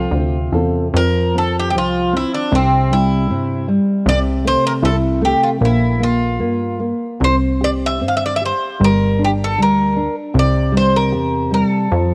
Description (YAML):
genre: fado-style ballad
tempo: 77 BPM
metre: 2/4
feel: rubato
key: F major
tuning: A4 = 444 Hz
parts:
  - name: Greek bouzouki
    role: melody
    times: 0.0-12.1 s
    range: C4 to F5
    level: -21 LUFS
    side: equal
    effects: cassette tape
  - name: nylon-string guitar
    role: accompaniment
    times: 0.0-12.1 s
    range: C3 to A4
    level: -20 LUFS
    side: equal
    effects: cassette tape
  - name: plucky analog bass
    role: bass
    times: 0.0-12.1 s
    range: G1 to G2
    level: -21 LUFS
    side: equal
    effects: none
room: light reverb, small room ambience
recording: home recording on cassette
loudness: -17 LUFS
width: mono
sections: 0.9-12.1 A section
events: none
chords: 0.0 F; 0.9 F5; 2.5 C; 4.1 Am/C; 5.6 Bb5; 7.2 C5; 8.8 G5; 10.4 C